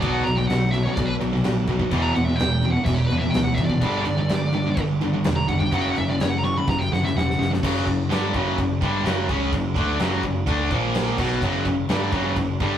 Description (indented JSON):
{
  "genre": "heavy metal",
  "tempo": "126 BPM",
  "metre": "4/4",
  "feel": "straight",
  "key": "F# phrygian dominant",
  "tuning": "A4 = 440 Hz",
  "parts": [
    { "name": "high-gain lead guitar", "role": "melody", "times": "0.0-7.5 s", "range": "G4 to C#6", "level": "-27 LUFS", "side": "equal", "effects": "distortion" },
    { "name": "distorted electric guitar", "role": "riff", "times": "0.0-12.8 s", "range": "E2 to D4", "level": "-26 LUFS", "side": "left 4 dB", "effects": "overdrive" },
    { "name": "high-gain distorted guitar", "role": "riff", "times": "0.0-12.8 s", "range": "E2 to D4", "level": "-24 LUFS", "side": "right 2 dB", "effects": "distortion" },
    { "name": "picked electric bass", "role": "bass", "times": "0.0-12.8 s", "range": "E1 to D2", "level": "-27 LUFS", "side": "equal", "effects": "none" },
    { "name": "big rock drum kit", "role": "drums", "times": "0.0-12.7 s", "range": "crash cymbal, kick drum, snare drum", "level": "-27 LUFS", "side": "equal", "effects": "none" }
  ],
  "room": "moderate studio reverb, RT60 0.6 s",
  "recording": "rough rehearsal-room recording",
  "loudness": "-20 LUFS",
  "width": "side -10 dB against mid",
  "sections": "0.0-7.6 A section; 7.6-12.8 B section",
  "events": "lead electric guitar solo 0.0-7.6; drum fill 6.7-7.6",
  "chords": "0.0 B5; 1.9 E5; 3.8 G5; 5.7 F#5; 10.7 A#5; 11.2 F#5"
}